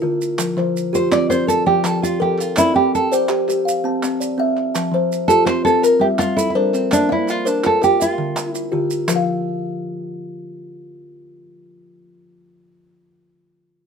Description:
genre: southern african traditional, mbira-style interlocking cycle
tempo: 111 BPM (dotted quarters)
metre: 12/8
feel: straight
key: F major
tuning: A4 = 440 Hz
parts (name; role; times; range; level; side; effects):
- kalimba; arpeggios; 0.0-12.5 s; D3 to A5; -21 LUFS; left 3 dB; none
- kalimba; arpeggios; 0.0-12.5 s; D3 to A5; -24 LUFS; right 3 dB; none
- maracas; percussion; 0.2-9.3 s; none; -30 LUFS; right 7 dB; none
- group handclap; percussion; 0.4-9.3 s; none; -27 LUFS; right 3 dB; none
- nylon-string guitar; melody; 0.9-8.7 s; C4 to D5; -17 LUFS; right 1 dB; none
room: light reverb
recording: minimal, uncompressed stereo recording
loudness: -16 LUFS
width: side -6 dB against mid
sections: 0.0-9.1 A section; 9.1-13.4 B section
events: none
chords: 0.4 F; 2.6 C; 4.7 F; 5.8 Gm; 6.9 Bb5; 8.0 Dm; 9.1 N.C.

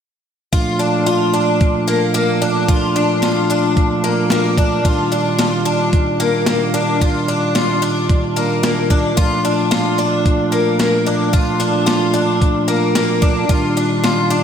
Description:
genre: dream pop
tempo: 111 BPM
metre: 4/4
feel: straight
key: Bb major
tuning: A4 = 442 Hz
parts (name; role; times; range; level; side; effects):
- mellow tonewheel organ; sustained chords; 0.5-14.4 s; Bb2 to F4; -18 LUFS; right 2 dB; slow rotary speaker
- picked twelve-string acoustic guitar; arpeggios; 0.5-14.4 s; Bb3 to F4; -18 LUFS; left 2 dB; analog chorus, tape echo
- crisp 8-bit digital drum machine; drums; 0.5-14.4 s; hi-hat, kick drum, snare drum; -18 LUFS; equal; none
room: wet lush hall reverb, RT60 2.6 s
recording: big arena sound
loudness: -14 LUFS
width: side -8 dB against mid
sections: 0.5-14.4 A section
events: none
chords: 0.5 Bbmaj7; 4.8 Ebmaj9; 9.2 Bbmaj7; 13.5 Ebmaj9

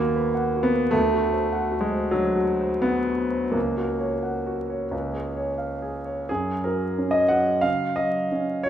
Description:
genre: classical, romantic character piece for solo piano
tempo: 80-104 BPM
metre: 4/4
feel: rubato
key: F# major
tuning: A4 = 440 Hz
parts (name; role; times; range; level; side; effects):
- warm concert grand piano; solo; 0.0-8.7 s; C#2 to F#5; -22 LUFS; equal; none
room: moderate recital hall reverb, RT60 1.5 s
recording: minimal, uncompressed stereo recording, vinyl crackle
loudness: -22 LUFS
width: side -10 dB against mid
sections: 0.0-6.3 A section; 6.3-8.7 B section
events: none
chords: 0.0 B/D#; 1.0 D7; 3.5 F#/C#; 4.9 C#; 6.3 F#5

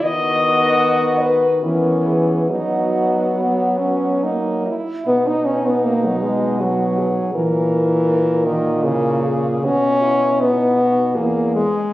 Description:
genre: classical, lyrical piece for horn quartet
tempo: 68-81 BPM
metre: 3/4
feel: rubato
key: B major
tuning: A4 = 440 Hz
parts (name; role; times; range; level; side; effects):
- dark French horn; melody; 0.0-11.9 s; C#4 to D#5; -23 LUFS; left 2 dB; none
- clear French horn; second line; 0.0-11.7 s; B3 to A#4; -24 LUFS; right 2 dB; none
- warm French horn; accompaniment; 0.0-11.9 s; C#3 to D#4; -18 LUFS; left 1 dB; none
- mellow French horn; bass; 0.0-11.7 s; E2 to F#3; -21 LUFS; right 1 dB; none
room: moderate recital hall reverb, RT60 1.6 s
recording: recorded on a phone in the room, club reverb, compression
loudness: -15 LUFS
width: side -16 dB against mid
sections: 0.0-5.1 A section; 5.1-11.9 B section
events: none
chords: 0.0 B/D#; 1.6 C#m7/E; 2.5 B/F#; 4.2 F#; 5.1 B; 7.3 A#m7b5; 9.6 B; 11.2 C#m/E

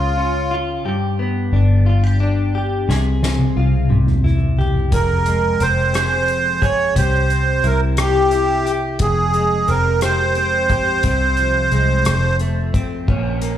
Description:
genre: six-eight pop ballad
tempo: 59 BPM (dotted quarters)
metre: 6/8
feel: straight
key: F harmonic minor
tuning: A4 = 440 Hz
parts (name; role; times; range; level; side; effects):
- accordion; melody; 0.0-0.6, 4.9-12.4 s; F4 to Db5; -18 LUFS; right 2 dB; light tremolo tuning, slapback echo, tape echo
- direct-recorded clean electric guitar; accompaniment; 0.0-13.6 s; F2 to Ab4; -22 LUFS; left 2 dB; double-tracked left and right, slapback echo
- vintage muted fingered electric bass; bass; 0.0-13.6 s; F1 to Db2; -19 LUFS; equal; none
- soft-mallet drum kit; drums; 2.9-13.6 s; crash cymbal, hi-hat, kick drum, rim click, snare drum, toms; -21 LUFS; left 1 dB; none
room: studio reverb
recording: live gig heard through the venue's PA, club reverb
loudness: -15 LUFS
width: side -10 dB against mid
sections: 0.0-13.1 A section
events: drum fill 2.9-4.9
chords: 0.0 Db; 0.9 G; 2.9 Fm/C; 3.9 C; 4.9 Fm; 7.0 C; 9.0 Fmadd9; 11.0 Fm/C; 12.1 F

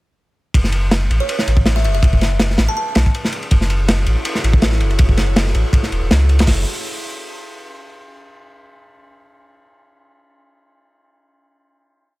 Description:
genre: drum and bass, jungle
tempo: 162 BPM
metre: 4/4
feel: swing 55% on 16ths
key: F# minor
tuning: A4 = 438 Hz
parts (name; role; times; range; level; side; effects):
- saturated sub bass; bass; 0.5-6.6 s; E1 to C#2; -16 LUFS; equal; none
- crunchy breakbeat drum kit; drums; 0.5-6.6 s; hi-hat, kick drum, ride cymbal, snare drum; -16 LUFS; equal; none
- buzzing kalimba; melody; 1.2-3.3 s; C#5 to A5; -25 LUFS; equal; dub echo
- airy breathy pad; sustained chords; 3.7-6.6 s; E4 to C#5; -29 LUFS; equal; chorus
room: small room ambience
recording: none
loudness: -14 LUFS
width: side -19 dB against mid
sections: 0.5-6.5 drop; 6.5-8.0 final chord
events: drop 0.5-6.5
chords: 0.5 F#m7

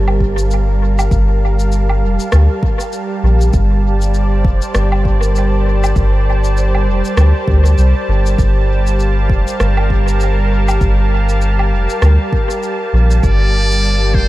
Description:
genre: ambient dub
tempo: 99 BPM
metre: 4/4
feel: swing 58% on 16ths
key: unclear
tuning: A4 = 439 Hz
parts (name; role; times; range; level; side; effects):
- warm analog pad; sustained chords; 0.0-14.3 s; G3 to A5; -20 LUFS; right 1 dB; chorus
- vibraphone with soft mallets; arpeggios; 0.0-14.3 s; G4 to C5; -26 LUFS; left 1 dB; tape echo
- soft dub sub bass; bass; 0.0-14.3 s; F1 to D2; -12 LUFS; equal; none
- electronic woodblock, shaker and rim click; drums; 0.1-14.0 s; none; -25 LUFS; equal; overdrive, dub echo
- electronic kick drum; drums; 0.2-14.3 s; none; -16 LUFS; equal; none
- trumpet with metal mute; melody; 13.2-14.3 s; C5 to D5; -18 LUFS; equal; none
room: light reverb, digital ambience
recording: none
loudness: -11 LUFS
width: side -16 dB against mid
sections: 0.0-14.3 A section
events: none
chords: 0.0 Bbmaj7

